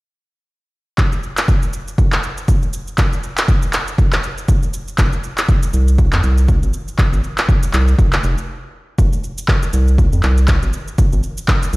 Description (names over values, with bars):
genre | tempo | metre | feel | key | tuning
afro house | 120 BPM | 4/4 | swing 57% on 16ths | F minor | A4 = 440 Hz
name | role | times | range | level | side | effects
electronic handclaps and shaker | drums | 1.0-11.8 s | none | -21 LUFS | equal | none
electronic kick drum | drums | 1.0-11.6 s | none | -15 LUFS | equal | none
round analog bass | bass | 5.0-11.8 s | F1 to F2 | -14 LUFS | equal | sidechain pumping
room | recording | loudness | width
little or no reverb | played on a big sound system in a bare room, stone room reverb | -14 LUFS | side -22 dB against mid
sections
1.0-9.0 A section; 9.0-11.8 B section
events
stop 8.5-9.0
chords
none